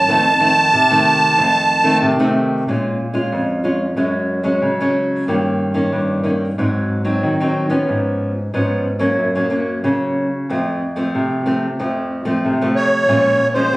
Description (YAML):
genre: samba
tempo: 92 BPM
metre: 4/4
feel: straight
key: Bb minor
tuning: A4 = 440 Hz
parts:
  - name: musette accordion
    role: melody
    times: 0.0-2.0, 12.8-13.8 s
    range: C5 to A5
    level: -13 LUFS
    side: right 1 dB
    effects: plate reverb
  - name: nylon-string guitar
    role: accompaniment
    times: 0.0-13.8 s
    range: F2 to F4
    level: -16 LUFS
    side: equal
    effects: none
room: moderate studio reverb, RT60 0.5 s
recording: recorded on a phone in the room, studio reverb, compression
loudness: -15 LUFS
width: side -19 dB against mid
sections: 0.0-2.7 A section; 2.7-13.1 B section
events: none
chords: 0.1 F7; 2.7 Bbm7; 4.0 Gbsus2; 5.3 Eb7/G; 6.6 Ab7; 7.9 Db7/Ab; 9.2 Gb; 10.5 F; 13.1 Bbm7